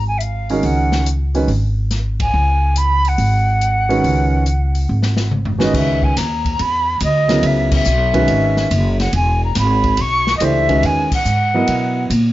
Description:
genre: modal jazz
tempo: 141 BPM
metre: 4/4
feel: swing 68% on 8ths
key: C# dorian from 5.7 s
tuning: A4 = 440 Hz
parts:
  - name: concert flute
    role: melody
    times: 0.0-12.0 s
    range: Eb5 to C#6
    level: -18 LUFS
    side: equal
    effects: plate reverb
  - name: upright bass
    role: bass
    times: 0.0-12.3 s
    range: E1 to B2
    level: -17 LUFS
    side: equal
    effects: none
  - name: open jazz drum kit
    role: drums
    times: 0.2-12.2 s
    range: crash cymbal, hi-hat, kick drum, ride cymbal, snare drum, toms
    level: -24 LUFS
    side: left 2 dB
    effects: none
  - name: warm grand piano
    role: accompaniment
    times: 0.5-12.1 s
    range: C#3 to D#5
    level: -18 LUFS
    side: right 2 dB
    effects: none
room: light reverb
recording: nothing above 7.6 kHz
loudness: -14 LUFS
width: side -15 dB against mid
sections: 0.0-5.7 A section; 5.7-12.3 B section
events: band accent 2.1, 7.6, 11.0; drum fill 4.9-5.7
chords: 0.0 Db9sus4; 5.7 C#m11

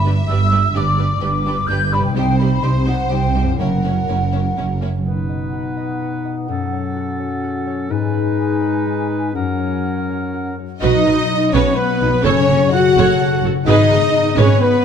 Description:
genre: cinematic, heroic adventure film score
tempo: 126 BPM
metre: 3/4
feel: straight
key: B major from 5.1 s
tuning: A4 = 440 Hz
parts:
  - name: rich symphonic violin section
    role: melody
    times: 0.0-4.8, 10.8-14.8 s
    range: A#4 to F#5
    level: -27 LUFS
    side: left 3 dB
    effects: none
  - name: mellow hollow flute section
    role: second line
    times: 0.0-14.8 s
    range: B4 to G6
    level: -24 LUFS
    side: left 1 dB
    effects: none
  - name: rich studio violin section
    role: second line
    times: 0.0-4.9, 10.8-14.8 s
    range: E4 to F#5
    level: -28 LUFS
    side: left 2 dB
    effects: none
  - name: concert harp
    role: arpeggios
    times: 0.0-14.8 s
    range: F#2 to B5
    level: -22 LUFS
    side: left 10 dB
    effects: none
  - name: dark symphonic cello section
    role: bass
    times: 0.0-5.0, 10.8-14.8 s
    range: F#2 to F#4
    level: -20 LUFS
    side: right 3 dB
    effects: none
  - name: warm symphonic double bass section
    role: bass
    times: 0.0-5.0, 10.8-14.5 s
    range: F#1 to C2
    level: -19 LUFS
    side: right 4 dB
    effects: none
  - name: rich symphonic viola section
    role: accompaniment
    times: 0.1-4.9, 10.8-14.6 s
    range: G3 to C#5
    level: -24 LUFS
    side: right 3 dB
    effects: none
  - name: mellow French horn section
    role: sustained chords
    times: 5.0-14.8 s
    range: F#3 to F#4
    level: -23 LUFS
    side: left 5 dB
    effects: none
  - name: warm clarinet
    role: second line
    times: 5.1-10.5 s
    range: C#4 to D#4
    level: -24 LUFS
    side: equal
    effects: none
  - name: warm oboe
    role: second line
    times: 5.1-14.8 s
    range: A4 to F#5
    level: -28 LUFS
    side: right 2 dB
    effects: none
  - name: warm trumpet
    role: stabs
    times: 10.8-14.8 s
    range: B4 to F#5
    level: -24 LUFS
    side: right 2 dB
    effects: none
room: light reverb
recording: none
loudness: -15 LUFS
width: side -7 dB against mid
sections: 0.0-5.1 A section; 5.1-10.8 B section; 10.8-14.8 C section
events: none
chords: 0.0 G; 2.2 Cm; 3.6 F#7; 5.1 B; 6.5 F#m; 7.9 G#m; 9.3 F#; 10.8 B; 12.2 F#m; 13.7 G#m

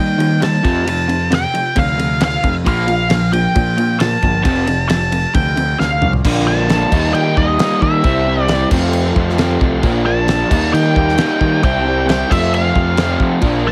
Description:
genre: classic rock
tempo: 134 BPM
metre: 4/4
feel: straight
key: unclear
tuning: A4 = 440 Hz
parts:
  - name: octave-fuzz lead guitar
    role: melody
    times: 0.0-13.7 s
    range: Eb5 to A5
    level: -21 LUFS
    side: equal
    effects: wah, distortion
  - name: crunchy overdriven guitar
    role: riff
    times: 0.0-13.7 s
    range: F2 to F4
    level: -22 LUFS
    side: equal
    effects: none
  - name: crunchy overdriven guitar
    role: riff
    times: 0.0-13.7 s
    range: F2 to E4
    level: -23 LUFS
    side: equal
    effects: none
  - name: growling picked electric bass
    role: bass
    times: 0.0-13.7 s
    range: F1 to F3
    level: -22 LUFS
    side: equal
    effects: overdrive
  - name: damped 70s drum kit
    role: drums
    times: 0.2-13.5 s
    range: crash cymbal, kick drum, ride cymbal, snare drum, toms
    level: -22 LUFS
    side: equal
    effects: none
  - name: bright tonewheel organ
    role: sustained chords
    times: 6.2-13.7 s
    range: F3 to F5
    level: -31 LUFS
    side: equal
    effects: none
room: small room reverb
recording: none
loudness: -15 LUFS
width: mono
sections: 0.0-6.2 A section; 6.2-13.7 B section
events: drum fill 5.8-6.2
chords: 0.0 Eb; 0.6 F; 2.7 Bb5; 4.4 F; 6.2 Bb; 6.9 Eb; 8.0 C; 8.7 F; 9.8 Bb; 10.5 Eb; 11.6 C; 12.3 F

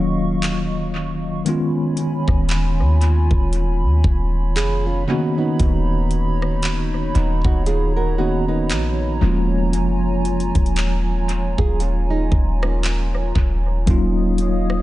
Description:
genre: contemporary R&B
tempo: 58 BPM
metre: 4/4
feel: swing 58% on 16ths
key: Eb minor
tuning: A4 = 440 Hz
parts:
  - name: tine electric piano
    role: accompaniment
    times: 0.0-14.8 s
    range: C#3 to F#4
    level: -23 LUFS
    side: equal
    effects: fast stereo tremolo, analog delay
  - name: hollow soft pad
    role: sustained chords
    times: 0.0-14.8 s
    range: Gb3 to Eb6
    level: -28 LUFS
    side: equal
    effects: chorus
  - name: nylon-string guitar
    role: arpeggios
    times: 0.0-13.8 s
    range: Bb3 to A#4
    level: -27 LUFS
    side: right 6 dB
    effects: analog delay
  - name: warm 808-style bass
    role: bass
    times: 0.0-14.8 s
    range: Eb1 to Eb2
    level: -20 LUFS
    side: equal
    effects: none
  - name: trap drum kit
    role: drums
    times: 0.4-14.8 s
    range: handclaps, hi-hat, kick drum, rim click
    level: -22 LUFS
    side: equal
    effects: analog delay
room: little or no reverb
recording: echo-heavy mix, nothing above 10.6 kHz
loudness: -17 LUFS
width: side -16 dB against mid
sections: 0.0-13.9 A section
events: none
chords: 0.0 Ebm9; 1.5 Db7/Eb; 5.1 Bmaj9/D#; 9.2 Bbm7/Eb; 13.9 Ebm9

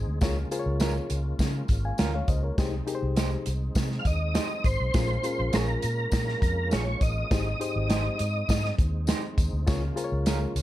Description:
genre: uptempo 1960s-style soul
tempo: 101 BPM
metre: 4/4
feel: straight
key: Ab major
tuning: A4 = 440 Hz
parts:
  - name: tonewheel organ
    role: sustained chords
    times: 0.0-10.6 s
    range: Ab3 to Ab4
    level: -40 LUFS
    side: right 1 dB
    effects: fast rotary speaker, chorus vibrato
  - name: vintage muted fingered electric bass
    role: bass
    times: 0.0-10.6 s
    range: Ab1 to Db3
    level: -28 LUFS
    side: equal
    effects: none
  - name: barky reed electric piano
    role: accompaniment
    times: 0.2-10.6 s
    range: Ab2 to Ab5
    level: -32 LUFS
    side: left 4 dB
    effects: overdrive
  - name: natural country drum kit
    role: drums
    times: 0.2-10.6 s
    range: hi-hat, kick drum, snare drum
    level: -27 LUFS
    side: equal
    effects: none
  - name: tambourine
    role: percussion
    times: 0.2-10.6 s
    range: none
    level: -44 LUFS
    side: left 6 dB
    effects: none
  - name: electric guitar through a small old amp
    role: stabs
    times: 0.8-10.4 s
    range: Db4 to Db5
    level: -35 LUFS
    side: right 6 dB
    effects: harmonic tremolo
  - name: tonewheel organ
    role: melody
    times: 4.0-8.8 s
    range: Bb4 to F5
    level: -30 LUFS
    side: right 1 dB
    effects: chorus vibrato, fast rotary speaker
room: studio ambience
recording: dark, warm production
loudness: -24 LUFS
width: side -14 dB against mid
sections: 0.0-10.6 A section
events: none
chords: 0.2 Db6; 2.6 Abmaj7/C; 4.9 Bbm7; 7.3 Abmaj7; 9.7 Db6

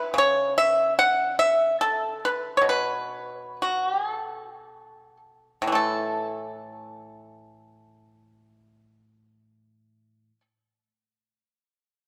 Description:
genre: chinese traditional, Chinese solo plucked strings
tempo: 51-79 BPM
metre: 4/4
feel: rubato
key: A gong mode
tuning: A4 = 440 Hz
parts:
  - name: pipa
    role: solo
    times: 0.0-10.4 s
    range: A2 to F#5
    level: -25 LUFS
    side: equal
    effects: none
room: wet plate reverb, RT60 2.4 s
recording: heard from further back in the room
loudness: -24 LUFS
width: mono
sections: 0.0-5.7 A section; 5.7-10.2 B section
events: slowing down 0.0-5.7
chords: none

